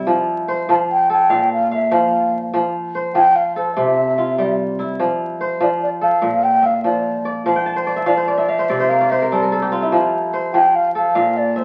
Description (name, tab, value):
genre	west african traditional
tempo	98 BPM (dotted quarters)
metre	12/8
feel	straight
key	F major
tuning	A4 = 435 Hz
part	kora	arpeggios	0.0-11.6 s	Bb2 to A5	-20 LUFS	equal	none
part	mellow hollow concert flute	melody	0.7-11.6 s	C5 to A5	-19 LUFS	equal	none
room	wet small room reverb, RT60 0.6 s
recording	very old 78 rpm record, vinyl crackle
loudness	-18 LUFS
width	mono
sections	0.0-11.6 A section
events	kora fill 7.5-9.9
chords	0.1 F; 1.3 Bb5; 2.5 F; 3.8 C; 5.0 F; 6.2 Bb; 7.5 Fmaj13; 8.7 C5; 9.9 F